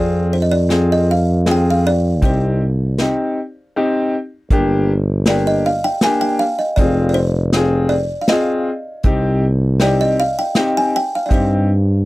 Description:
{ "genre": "klezmer", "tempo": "79 BPM", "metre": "3/4", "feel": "straight", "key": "C minor", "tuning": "A4 = 441 Hz", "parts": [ { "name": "buzzing kalimba", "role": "melody", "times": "0.0-12.1 s", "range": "C5 to Ab5", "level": "-20 LUFS", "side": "equal", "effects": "none" }, { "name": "clear upright piano", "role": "accompaniment", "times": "0.0-11.7 s", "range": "Bb3 to Ab4", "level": "-19 LUFS", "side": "left 1 dB", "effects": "none" }, { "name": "breathy tuba", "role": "bass", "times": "0.0-12.1 s", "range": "F1 to G2", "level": "-16 LUFS", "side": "equal", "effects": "none" }, { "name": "unplugged drum kit", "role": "drums", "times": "0.7-11.5 s", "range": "hi-hat, kick drum, snare drum", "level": "-16 LUFS", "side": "equal", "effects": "none" } ], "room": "little or no reverb", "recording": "dry, close 1970s-style studio recording", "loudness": "-14 LUFS", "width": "side -18 dB against mid", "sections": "0.0-4.5 A section; 4.5-12.1 B section", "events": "none", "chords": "0.0 Fm; 2.2 Cm; 4.5 Gm; 6.8 Fm; 9.1 Cm", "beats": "0.69 1.46 | 2.23 2.99 3.75 | 4.51 5.27 6.03 | 6.79 7.54 8.30 | 9.05 9.81 10.56 | 11.31" }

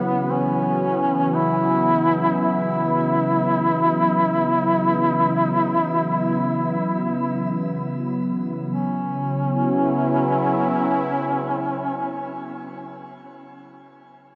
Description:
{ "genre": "dark ambient drone", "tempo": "free time", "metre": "none", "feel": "none", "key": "C# minor", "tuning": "A4 = 439 Hz", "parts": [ { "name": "mellow duduk", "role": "melody", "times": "0.0-12.5 s", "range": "B3 to E4", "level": "-24 LUFS", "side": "equal", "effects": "shimmer reverb, diffuse ambient delay" }, { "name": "sweeping resonant pad", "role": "sustained chords", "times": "0.0-13.0 s", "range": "C#3 to E4", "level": "-25 LUFS", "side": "equal", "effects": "chorus" } ], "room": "wet cathedral reverb, RT60 6.1 s", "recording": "in a vast, echoing space", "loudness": "-21 LUFS", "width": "mono", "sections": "0.0-8.7 A section; 8.7-12.9 B section", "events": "none", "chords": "0.0 C#m", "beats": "free time" }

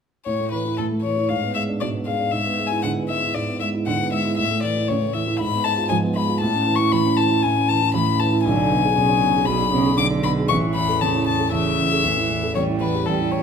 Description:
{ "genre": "quick classical-period movement for piano trio", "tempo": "117 BPM", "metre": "4/4", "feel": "straight", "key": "A major", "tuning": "A4 = 441 Hz", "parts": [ { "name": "rich violin", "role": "melody", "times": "0.3-13.4 s", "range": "A4 to D6", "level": "-22 LUFS", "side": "left 8 dB", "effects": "none" }, { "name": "warm grand piano", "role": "accompaniment", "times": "0.3-13.4 s", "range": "A1 to A4", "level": "-22 LUFS", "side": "right 2 dB", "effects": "none" }, { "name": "warm cello", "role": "second line", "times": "0.8-13.4 s", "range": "A2 to G3", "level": "-26 LUFS", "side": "right 6 dB", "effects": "none" } ], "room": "wet recital hall reverb, RT60 1.4 s", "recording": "minimal, uncompressed stereo recording", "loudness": "-18 LUFS", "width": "side -6 dB against mid", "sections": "0.3-13.4 A section", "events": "none", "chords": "0.3 A5; 1.3 G#dim; 2.3 E7/G#; 4.4 A; 5.4 G#m6; 6.4 A; 8.4 G#dim/B; 10.5 A; 12.6 A5", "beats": "| 0.27 0.78 1.30 1.81 | 2.33 2.84 3.35 3.87 | 4.38 4.89 5.40 5.90 | 6.41 6.92 7.43 7.94 | 8.45 8.96 9.47 9.98 | 10.50 11.01 11.53 12.04 | 12.55 13.07" }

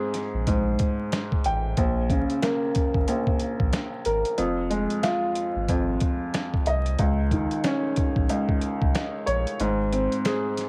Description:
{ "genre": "hip hop, boom-bap hip-hop", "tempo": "92 BPM", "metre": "4/4", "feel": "swing 60% on 16ths", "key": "F minor", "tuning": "A4 = 439 Hz", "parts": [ { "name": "dark upright piano", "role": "accompaniment", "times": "0.0-10.7 s", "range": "Bb1 to G5", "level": "-27 LUFS", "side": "equal", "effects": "high-pass filter, low-pass filter, cassette tape" }, { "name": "boom bap sampler-style drum kit", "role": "drums", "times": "0.1-10.7 s", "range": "hi-hat, kick drum, snare drum", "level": "-29 LUFS", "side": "equal", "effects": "none" }, { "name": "warm sub bass", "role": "bass", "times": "0.3-10.1 s", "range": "F1 to Db2", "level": "-30 LUFS", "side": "equal", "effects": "transformer saturation" } ], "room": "little or no reverb", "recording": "home recording on cassette, vinyl crackle", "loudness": "-25 LUFS", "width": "mono", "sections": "0.0-10.7 A section", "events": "none", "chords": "0.0 Abmaj7; 1.8 Bbm; 4.4 Fm7; 7.0 Dbsus2; 9.6 Ab", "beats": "0.47 1.12 | 1.77 2.43 3.08 3.73 | 4.38 5.03 5.69 6.34 | 6.99 7.64 8.29 8.95 | 9.60 10.25" }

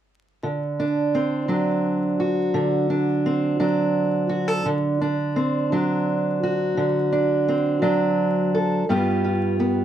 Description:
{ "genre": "acoustic country blues, solo or duo", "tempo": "57 BPM (dotted quarters)", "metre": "12/8", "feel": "straight", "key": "D mixolydian", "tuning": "A4 = 440 Hz", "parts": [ { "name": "fingerpicked steel-string acoustic guitar", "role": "solo", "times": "0.4-9.8 s", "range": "G2 to A4", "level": "-20 LUFS", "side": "right 1 dB", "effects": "none" } ], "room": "moderate studio ambience, RT60 0.5 s", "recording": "dark, warm production, vinyl crackle, faint mains hum", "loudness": "-20 LUFS", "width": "side -10 dB against mid", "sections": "0.4-9.8 A section", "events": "none", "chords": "0.4 D7; 8.9 G7", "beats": "| 0.44 1.50 2.55 3.61 | 4.66 5.71 6.77 7.82 | 8.87" }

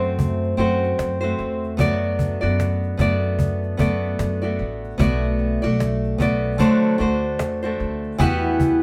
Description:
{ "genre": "acoustic pop", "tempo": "75 BPM", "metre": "4/4", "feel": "swing 60% on 16ths", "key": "unclear", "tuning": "A4 = 440 Hz", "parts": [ { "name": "nylon-string guitar", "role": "accompaniment", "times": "0.0-8.8 s", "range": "D3 to D5", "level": "-24 LUFS", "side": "equal", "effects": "none" }, { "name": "fingerpicked steel-string acoustic guitar", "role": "arpeggios", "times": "0.0-8.8 s", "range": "F#3 to A4", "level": "-32 LUFS", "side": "equal", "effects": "none" }, { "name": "upright bass", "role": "bass", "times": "0.0-8.8 s", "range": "A1 to F#2", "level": "-27 LUFS", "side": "equal", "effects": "none" }, { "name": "cajon", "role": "drums", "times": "0.0-8.8 s", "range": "none", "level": "-25 LUFS", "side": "equal", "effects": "none" }, { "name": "warm grand piano", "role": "accompaniment", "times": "8.2-8.8 s", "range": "E4 to F#5", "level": "-34 LUFS", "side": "equal", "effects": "none" } ], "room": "moderate studio reverb, RT60 0.8 s", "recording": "band playing live in one room", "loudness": "-21 LUFS", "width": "mono", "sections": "0.0-8.2 A section", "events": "none", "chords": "0.0 F#dim; 1.8 D6/F#; 5.0 Bm7; 6.6 D7; 8.2 Emadd9", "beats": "0.19 0.99 | 1.79 2.60 3.40 4.20 | 5.00 5.80 6.60 7.40 | 8.20" }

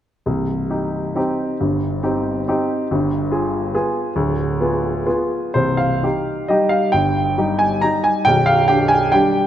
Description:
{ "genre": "classical, piano waltz", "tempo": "116-148 BPM", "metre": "3/4", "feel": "rubato", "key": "C minor", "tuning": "A4 = 440 Hz", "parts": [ { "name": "clear grand piano", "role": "solo", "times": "0.3-9.5 s", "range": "B0 to Bb5", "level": "-16 LUFS", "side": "equal", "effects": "none" } ], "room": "moderate concert hall reverb, RT60 2.0 s", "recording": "none", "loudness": "-16 LUFS", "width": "side -11 dB against mid", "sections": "0.3-5.6 A section; 5.6-9.5 B section", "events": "none", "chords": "0.3 Cm; 2.9 G7b9; 5.6 Cm; 8.3 G7/B", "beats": "| 0.25 0.70 1.17 | 1.61 2.03 2.47 | 2.90 3.31 3.73 | 4.16 4.59 5.06 | 5.56 6.04 6.50 | 6.94 7.38 7.83 | 8.27 8.69 9.13" }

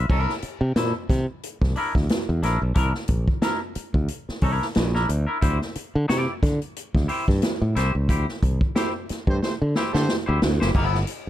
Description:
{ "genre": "funk", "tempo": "90 BPM", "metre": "4/4", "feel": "swing 56% on 16ths", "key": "unclear", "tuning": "A4 = 439 Hz", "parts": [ { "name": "twangy electric guitar", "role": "accompaniment", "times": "0.0-11.0 s", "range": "F3 to D5", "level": "-27 LUFS", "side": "left 2 dB", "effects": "wide subtle chorus" }, { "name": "modern bright fingered electric bass", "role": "bass", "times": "0.0-11.3 s", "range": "F#1 to D3", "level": "-23 LUFS", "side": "equal", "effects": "none" }, { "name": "swinging big-band drum kit", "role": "drums", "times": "0.1-11.2 s", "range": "crash cymbal, hi-hat, kick drum, snare drum", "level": "-24 LUFS", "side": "equal", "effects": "none" }, { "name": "warm horn section", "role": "second line", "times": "8.8-10.1 s", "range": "A3 to C5", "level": "-31 LUFS", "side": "right 3 dB", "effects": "none" } ], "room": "small room ambience", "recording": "dark, warm production", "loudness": "-21 LUFS", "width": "side -13 dB against mid", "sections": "0.1-10.7 A section", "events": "band accent 8.1-10.7; drum fill 9.4-10.7", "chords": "0.1 C9; 5.4 D9sus4; 10.7 G6", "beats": "| 0.09 0.76 1.43 2.09 | 2.76 3.43 4.09 4.76 | 5.43 6.09 6.76 7.43 | 8.09 8.76 9.42 10.08 | 10.75" }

